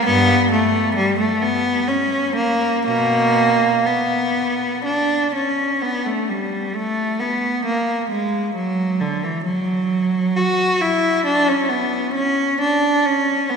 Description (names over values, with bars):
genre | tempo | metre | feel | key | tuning
classical, baroque-style suite movement for unaccompanied cello | 59-68 BPM | 3/4 | rubato | B minor | A4 = 440 Hz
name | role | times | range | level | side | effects
clear cello | solo | 0.0-13.6 s | G2 to F#4 | -16 LUFS | equal | none
room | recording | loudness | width
wet cathedral reverb, RT60 4.2 s | recorded in a church or concert hall | -17 LUFS | side -6 dB against mid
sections
0.0-5.8 A section; 5.8-13.6 B section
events
none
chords
none